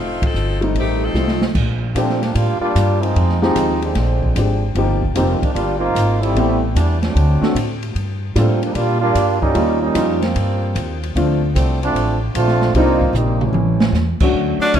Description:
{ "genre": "jazz, big band swing", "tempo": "150 BPM", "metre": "4/4", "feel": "swing 67% on 8ths", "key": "Bb major", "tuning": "A4 = 440 Hz", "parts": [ { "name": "edgy saxophone section", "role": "melody", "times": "0.0-1.4 s", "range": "Eb3 to A4", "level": "-24 LUFS", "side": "left 3 dB", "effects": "none" }, { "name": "upright bass", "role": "bass", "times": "0.0-14.8 s", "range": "F1 to Bb2", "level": "-19 LUFS", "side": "equal", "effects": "none" }, { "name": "open jazz drum kit", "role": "drums", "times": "0.2-14.8 s", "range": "crash cymbal, hi-hat, kick drum, ride cymbal, snare drum, toms", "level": "-23 LUFS", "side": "equal", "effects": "none" }, { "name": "warm concert grand piano", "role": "accompaniment", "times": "0.6-14.8 s", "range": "F3 to A4", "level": "-20 LUFS", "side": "left 1 dB", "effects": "none" }, { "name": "clear trombone section", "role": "second line", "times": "2.0-14.0 s", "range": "D3 to F4", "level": "-20 LUFS", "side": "right 2 dB", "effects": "none" }, { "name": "edgy tenor saxophone", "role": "melody", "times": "14.6-14.8 s", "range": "C#4 to D4", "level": "-14 LUFS", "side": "equal", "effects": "none" }, { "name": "bright saxophone section", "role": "sustained chords", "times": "14.6-14.8 s", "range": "A3 to F#4", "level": "-22 LUFS", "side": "right 2 dB", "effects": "none" } ], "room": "moderate large studio reverb, RT60 1.4 s", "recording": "minimal, uncompressed stereo recording", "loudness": "-15 LUFS", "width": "side -9 dB against mid", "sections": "0.0-1.5 A section; 1.5-14.3 B section", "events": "band accent 0.1; drum fill 1.1-1.5, 13.1-13.9; trombone section solo 1.5-14.3", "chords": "0.0 F7; 1.5 Bb6; 3.2 Fm7; 4.0 Bb13; 4.8 Eb6; 6.3 Am7; 7.2 D7; 7.9 Gm7; 9.5 Eb9; 11.1 Dm7; 12.7 Cm7; 13.5 A7", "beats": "0.35 0.75 1.15 | 1.55 1.95 2.35 2.75 | 3.15 3.55 3.95 4.35 | 4.75 5.15 5.55 5.95 | 6.35 6.75 7.15 7.55 | 7.95 8.35 8.75 9.15 | 9.55 9.95 10.35 10.75 | 11.15 11.55 11.95 12.35 | 12.75 13.15 13.55 13.95 | 14.35 14.75" }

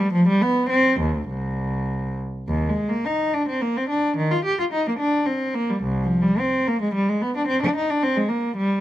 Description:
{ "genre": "classical, baroque-style suite movement for unaccompanied cello", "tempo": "98-113 BPM", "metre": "3/4", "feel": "rubato", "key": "Eb major", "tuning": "A4 = 441 Hz", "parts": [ { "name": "warm cello", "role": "solo", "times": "0.0-8.8 s", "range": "C2 to G4", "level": "-20 LUFS", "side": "equal", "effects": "none" } ], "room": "light reverb", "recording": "close, detailed microphones", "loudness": "-20 LUFS", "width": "side -13 dB against mid", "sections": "0.0-2.5 A section; 2.5-8.8 A section", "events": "none", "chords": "none", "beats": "0.13 | 0.70 1.29 1.88 | 2.48 3.05 3.60 | 4.16 4.71 5.26 | 5.83 6.39 6.94 | 7.48 8.01 8.55" }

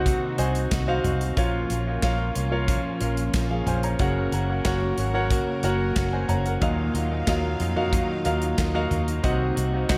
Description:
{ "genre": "piano-driven pop", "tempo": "92 BPM", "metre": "4/4", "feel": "straight", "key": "Bb minor", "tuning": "A4 = 440 Hz", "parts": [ { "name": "clear concert grand piano", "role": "accompaniment", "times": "0.0-10.0 s", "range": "Bb2 to Bb5", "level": "-29 LUFS", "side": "equal", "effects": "dub echo" }, { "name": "warm symphonic string section", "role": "sustained chords", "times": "0.0-10.0 s", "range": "C3 to F5", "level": "-38 LUFS", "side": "equal", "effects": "none" }, { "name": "direct-recorded clean electric guitar", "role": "riff", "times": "0.0-10.0 s", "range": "Gb2 to Gb4", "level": "-33 LUFS", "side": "equal", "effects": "none" }, { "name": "vintage muted fingered electric bass", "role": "bass", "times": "0.0-10.0 s", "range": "Gb1 to F2", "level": "-29 LUFS", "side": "equal", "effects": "none" }, { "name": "modern studio drum kit", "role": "drums", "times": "0.1-10.0 s", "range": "handclaps, hi-hat, kick drum, snare drum, toms", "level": "-30 LUFS", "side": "equal", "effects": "none" } ], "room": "light reverb", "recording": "echo-heavy mix", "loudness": "-24 LUFS", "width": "mono", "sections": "0.0-10.0 A section", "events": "none", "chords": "0.0 Cdim; 1.4 Bbm; 4.0 Gb; 6.6 Ebmadd9; 9.2 Cdim", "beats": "0.06 0.72 | 1.37 2.03 2.68 3.34 | 4.00 4.65 5.31 5.96 | 6.62 7.27 7.93 8.59 | 9.24 9.90" }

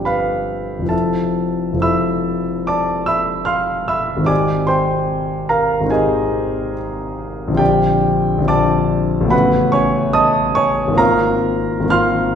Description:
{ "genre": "classical, impressionist solo piano", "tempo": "71 BPM", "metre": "4/4", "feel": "uneven beats, rubato", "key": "unclear", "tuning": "A4 = 440 Hz", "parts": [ { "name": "clear grand piano", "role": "solo", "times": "0.0-12.4 s", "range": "F1 to F6", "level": "-15 LUFS", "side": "equal", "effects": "none" } ], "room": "wet recital hall reverb, RT60 1.3 s", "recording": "heard from further back in the room", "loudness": "-15 LUFS", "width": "side -8 dB against mid", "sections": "0.0-12.4 A section", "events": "none", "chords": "0.0 G11; 0.9 Fmaj7; 4.3 Abmaj7; 7.6 Bb69; 9.3 A69; 11.0 Ab69", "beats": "0.08 | 0.92 1.85 2.69 3.49 | 4.30 5.11 5.95 6.79 | 7.60 8.48 9.32 10.15 | 10.99 11.91" }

